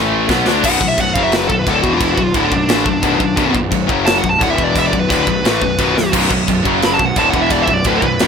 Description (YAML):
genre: heavy metal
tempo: 174 BPM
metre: 4/4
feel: straight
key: B minor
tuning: A4 = 440 Hz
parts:
  - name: distorted electric guitar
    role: riff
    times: 0.0-8.3 s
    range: B1 to D4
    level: -18 LUFS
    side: left 14 dB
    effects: overdrive
  - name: high-gain distorted guitar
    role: riff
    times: 0.0-8.3 s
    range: B1 to D4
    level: -21 LUFS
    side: right 1 dB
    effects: distortion
  - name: scooped high-gain guitar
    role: riff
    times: 0.0-0.6, 6.1-8.3 s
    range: B1 to D4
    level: -20 LUFS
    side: right 17 dB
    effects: distortion
  - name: fuzz picked electric bass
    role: bass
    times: 0.0-8.3 s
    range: B0 to D2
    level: -22 LUFS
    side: right 1 dB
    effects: overdrive
  - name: tight metal drum kit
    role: drums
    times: 0.3-8.3 s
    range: china cymbal, crash cymbal, kick drum, snare drum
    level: -18 LUFS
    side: right 1 dB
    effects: none
  - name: high-gain lead guitar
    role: melody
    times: 0.7-8.3 s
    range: D4 to B5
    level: -17 LUFS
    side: right 2 dB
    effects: distortion
room: light reverb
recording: none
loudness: -12 LUFS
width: side -6 dB against mid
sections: 0.6-8.3 A section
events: drum fill 0.0-0.6, 6.0; half time 0.6-8.3; lead electric guitar solo 0.6-8.3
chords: 0.3 Bm7; 0.6 B5; 1.2 F#5; 1.5 Bm; 1.8 E5; 2.2 Bm; 3.9 F#5; 4.2 Bm; 4.6 E5; 4.9 Bm; 6.7 F#5; 7.0 Bm; 7.3 E5; 7.7 Bm